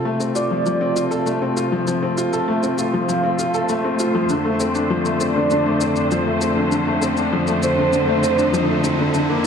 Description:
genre	piano and strings electronica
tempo	99 BPM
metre	4/4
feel	straight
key	unclear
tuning	A4 = 440 Hz
part	clear symphonic string section	sustained chords	0.0-9.5 s	F2 to C5	-24 LUFS	right 1 dB	low-pass filter
part	clear upright piano	riff	0.0-9.5 s	D3 to A4	-19 LUFS	left 2 dB	ping-pong delay
part	riser	sound effects	0.0-9.5 s	none	-32 LUFS	right 3 dB	none
part	shaker	drums	0.2-9.5 s	none	-32 LUFS	left 3 dB	none
part	warm velvety synth lead	melody	0.4-9.1 s	C5 to F5	-23 LUFS	right 2 dB	chorus, ping-pong delay
room	moderate lush hall reverb, RT60 1.9 s, small room ambience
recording	none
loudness	-17 LUFS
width	side -7 dB against mid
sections	0.0-9.5 A section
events	build-up 0.0-9.5; filter sweep on string section 0.0-9.5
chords	0.0 F; 4.3 Dm7/F

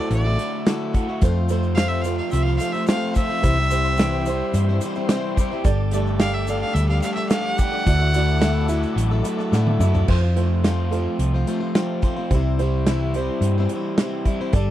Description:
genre	folk rock and heartland rock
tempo	108 BPM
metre	4/4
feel	straight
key	unclear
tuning	A4 = 440 Hz
part	bright fiddle	melody	0.0-9.2 s	D5 to F#5	-26 LUFS	right 1 dB	none
part	dark baby grand piano	accompaniment	0.0-14.7 s	E4 to B5	-32 LUFS	right 8 dB	none
part	picked plugged-in swing-style acoustic guitar	accompaniment	0.0-14.7 s	C3 to C5	-28 LUFS	left 6 dB	none
part	crunchy overdriven guitar	riff	0.0-14.7 s	F2 to G4	-27 LUFS	right 1 dB	none
part	hollow-body short-scale fingered electric bass	bass	0.1-14.7 s	G1 to A2	-20 LUFS	equal	none
part	natural country drum kit	drums	0.1-14.7 s	crash cymbal, hi-hat, kick drum, snare drum, toms	-21 LUFS	equal	none
part	tonewheel organ	sustained chords	1.2-10.1 s	C4 to D5	-35 LUFS	left 1 dB	slow rotary speaker, chorus vibrato
part	egg shaker	percussion	1.2-10.0 s	none	-42 LUFS	left 12 dB	none
room	little or no reverb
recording	dry, close 1970s-style studio recording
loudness	-18 LUFS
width	side -13 dB against mid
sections	0.0-10.1 A section; 10.1-14.7 B section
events	fiddle solo 0.0-10.1; grand piano fill 4.8-5.6, 9.0-10.1; drum fill 9.5-10.1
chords	0.0 Dadd9; 1.2 F; 3.4 C; 5.6 Gsus2; 7.9 Dadd9; 10.1 F; 12.3 C

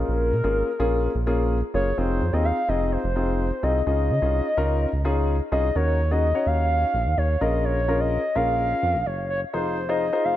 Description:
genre	dance-pop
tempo	127 BPM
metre	4/4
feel	straight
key	Eb dorian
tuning	A4 = 440 Hz
part	warm concert grand piano	accompaniment	0.0-10.4 s	Bb3 to Db5	-26 LUFS	left 3 dB	none
part	round analog bass	bass	0.0-10.4 s	F1 to Db3	-24 LUFS	right 1 dB	none
part	hollow clarinet-like synth lead	melody	0.1-10.4 s	Bb4 to F5	-25 LUFS	equal	chorus, dub echo
room	light reverb, small room ambience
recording	high-pass filter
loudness	-21 LUFS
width	side -13 dB against mid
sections	0.0-5.8 A section; 5.8-10.4 B section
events	build-up 5.8-10.4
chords	0.0 Bbm7; 2.0 Fm7; 3.9 Dbadd9; 5.8 Ebm7; 7.4 Bbm7; 9.5 Fm7

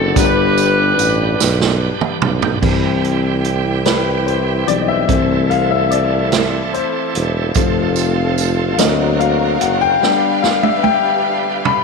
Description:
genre	slow gospel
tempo	49 BPM (dotted quarters)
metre	6/8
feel	straight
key	C major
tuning	A4 = 441 Hz
part	bright saxophone section	melody	0.0-1.8 s	C4 to B4	-18 LUFS	right 2 dB	slapback echo
part	warm grand piano	accompaniment	0.0-11.8 s	G2 to B5	-17 LUFS	left 10 dB	none
part	bright tonewheel organ	sustained chords	0.0-11.8 s	D3 to A4	-24 LUFS	right 11 dB	slow rotary speaker, overdrive
part	mellow tuba	bass	0.0-10.0 s	E1 to D2	-18 LUFS	right 2 dB	none
part	swinging big-band drum kit	drums	0.2-11.8 s	crash cymbal, hi-hat, kick drum, snare drum, toms	-19 LUFS	right 6 dB	none
part	tambourine	percussion	0.2-1.8, 7.5-9.2 s	none	-24 LUFS	right 17 dB	none
part	warm studio string section	sustained chords	2.6-11.8 s	C4 to G5	-25 LUFS	right 3 dB	none
room	moderate echo chamber reverb, RT60 2.2 s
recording	1960s-style stereo with parts hard left and right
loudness	-13 LUFS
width	side -4 dB against mid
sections	0.0-2.6 A section; 2.6-11.8 B section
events	drum fill 1.4-2.6, 10.0-11.8; grand piano solo 2.6-11.8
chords	0.2 G; 2.6 C; 5.1 Am/C; 7.6 F; 8.8 D7alt; 10.0 G

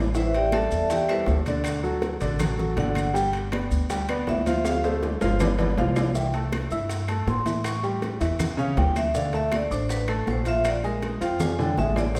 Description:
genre	Afro-Cuban jazz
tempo	160 BPM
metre	4/4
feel	straight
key	G major, C major from 6.2 s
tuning	A4 = 439 Hz
part	warm grand piano	accompaniment	0.0-12.2 s	C3 to E6	-30 LUFS	equal	none
part	upright bass	bass	0.0-12.2 s	G1 to A2	-30 LUFS	equal	none
part	bongos	percussion	0.1-12.2 s	none	-38 LUFS	equal	none
part	maracas	percussion	0.1-12.2 s	none	-46 LUFS	equal	none
part	vibraphone with medium hard mallets	melody	0.2-12.2 s	E4 to C#6	-30 LUFS	equal	none
part	congas	percussion	0.2-12.2 s	none	-35 LUFS	equal	none
part	timbales	percussion	0.3-12.0 s	none	-35 LUFS	equal	none
part	claves	percussion	0.5-12.1 s	none	-45 LUFS	equal	none
room	moderate concert hall reverb, RT60 1.9 s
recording	recorded in a church or concert hall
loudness	-25 LUFS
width	mono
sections	0.0-6.2 A section; 6.2-12.2 A section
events	drum fill 0.0, 4.7-6.2, 11.4-12.1; vibraphone solo 0.0-12.2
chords	0.2 A7sus4; 1.7 D; 3.2 G; 4.7 Dm7; 5.4 G7; 6.2 C6; 7.7 A7; 9.2 Dm; 10.6 Bb7

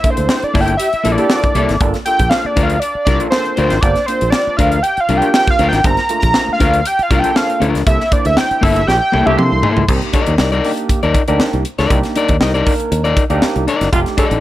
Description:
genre	funk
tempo	119 BPM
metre	4/4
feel	straight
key	unclear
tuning	A4 = 436 Hz
part	fat analog lead	melody	0.0-9.9 s	C5 to C6	-16 LUFS	right 1 dB	analog delay
part	overdriven tine electric piano	stabs	0.0-14.4 s	A3 to C5	-22 LUFS	right 3 dB	phaser
part	crisp fusion drum kit	drums	0.0-14.4 s	crash cymbal, hi-hat, kick drum, snare drum, toms	-17 LUFS	equal	none
part	fingered electric bass	bass	0.2-14.4 s	F1 to C3	-17 LUFS	equal	none
part	electric guitar at the edge of break-up	accompaniment	0.5-14.4 s	Bb3 to Eb5	-17 LUFS	left 5 dB	none
part	breathy trombone	second line	0.8-1.5, 8.9-9.4, 13.9-14.3 s	F4 to A4	-21 LUFS	right 2 dB	none
room	light reverb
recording	none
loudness	-12 LUFS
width	side -14 dB against mid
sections	0.0-9.9 A section; 9.9-14.4 B section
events	band accent 0.0-1.8, 7.9-9.9; analog synth lead solo 0.0-9.9; drum fill 8.9-9.9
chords	0.0 C13; 1.8 Gm7; 7.9 C13; 9.9 Cm9

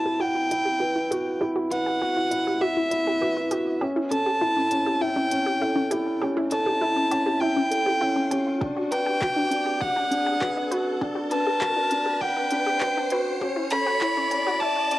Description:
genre	piano and strings electronica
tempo	100 BPM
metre	4/4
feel	straight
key	unclear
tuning	A4 = 439 Hz
part	dark violin	melody	0.0-15.0 s	E5 to B5	-25 LUFS	equal	none
part	felt-muted upright piano	riff	0.0-15.0 s	C#4 to F#5	-26 LUFS	equal	cassette tape
part	riser	sound effects	0.5-15.0 s	none	-35 LUFS	equal	none
part	analog pluck	arpeggios	0.1-14.9 s	C#4 to B4	-30 LUFS	left 1 dB	chorus, sidechain pumping, cassette tape, analog delay
part	organic electronic drum kit	drums	0.5-15.0 s	handclaps, hi-hat, woodblock	-33 LUFS	equal	overdrive, high-pass filter on hats, high-pass filter on perc, high-pass filter on snare
part	electronic kick drum	drums	8.6-14.7 s	none	-36 LUFS	equal	overdrive
room	moderate booth ambience, RT60 0.3 s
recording	home recording on cassette, high-pass filter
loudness	-22 LUFS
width	side -16 dB against mid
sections	0.0-15.0 A section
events	build-up 0.0-15.0; filter sweep on synth arpeggio sound 0.0-15.0; riser 0.5-15.0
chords	0.0 Emadd9; 3.8 A7; 8.6 Gmaj7; 13.4 F#m7

